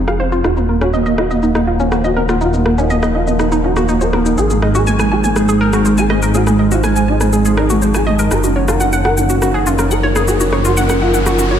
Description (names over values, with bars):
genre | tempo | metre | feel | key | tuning
melodic techno | 122 BPM | 4/4 | straight | unclear | A4 = 440 Hz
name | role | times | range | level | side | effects
expressive portamento lead | melody | 0.0-11.6 s | Ab3 to Bb4 | -17 LUFS | right 1 dB | wide subtle chorus, ping-pong delay
dark analog pad | sustained chords | 0.0-11.6 s | Ab3 to Gb5 | -19 LUFS | equal | chorus
dark detuned saw bass | bass | 0.0-11.6 s | Eb1 to Ab1 | -18 LUFS | equal | none
overtone-sweeping drone | drone | 0.0-11.6 s | F2 to F3 | -26 LUFS | right 3 dB | chorus, built-in reverb
analog pluck | arpeggios | 0.1-11.6 s | Db4 to Ab5 | -19 LUFS | equal | chorus, ping-pong delay
electronic rim click and shaker | drums | 0.1-11.5 s | none | -23 LUFS | left 1 dB | overdrive, low-pass filter on snare, studio reverb, low-pass filter on toms, low-pass filter on perc, low-pass filter on hats
riser | sound effects | 9.6-11.6 s | none | -26 LUFS | left 1 dB | none
room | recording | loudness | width
moderate lush hall reverb, RT60 1.9 s | dreamy mix soaked in reverb | -12 LUFS | side -9 dB against mid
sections
0.0-11.6 A section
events
filter sweep on drum 0.0-11.6; filter sweep on synth arpeggio sound 0.0-11.6; riser 9.6-11.6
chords
0.4 Ebm; 4.4 Ab; 8.3 Gb6